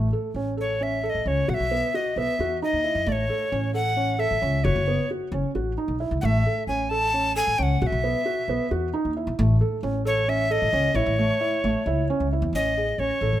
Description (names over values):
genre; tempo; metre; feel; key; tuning
contemporary instrumental, chamber music in an uneven meter; 266 BPM (eighths); 7/8; straight; A lydian; A4 = 440 Hz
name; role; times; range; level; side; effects
felt-muted upright piano; arpeggios; 0.0-13.4 s; A3 to A4; -27 LUFS; right 3 dB; none
upright bass; bass; 0.0-13.4 s; F#1 to F#2; -26 LUFS; left 1 dB; none
breathy alto recorder; melody; 0.6-13.4 s; C#5 to A5; -25 LUFS; left 1 dB; none
room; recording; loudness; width
light reverb; close, detailed microphones; -22 LUFS; side -12 dB against mid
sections
0.0-12.5 A section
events
none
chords
0.0 A; 1.5 Bsus4; 3.1 A; 4.6 F#m; 6.2 A; 7.8 Bsus4; 9.4 A; 12.5 Amaj7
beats
0.13 0.36 0.58 0.81 1.04 1.26 | 1.49 1.71 1.94 2.17 2.39 2.62 2.84 | 3.07 3.29 3.52 3.74 3.97 4.20 4.42 | 4.65 4.87 5.10 5.32 5.55 5.77 6.00 | 6.22 6.45 6.67 6.90 7.13 7.35 7.58 | 7.80 8.03 8.25 8.48 8.71 8.93 9.16 | 9.38 9.61 9.83 10.06 10.28 10.51 10.73 | 10.96 11.19 11.41 11.64 11.86 12.09 12.32 | 12.54 12.77 12.99 13.22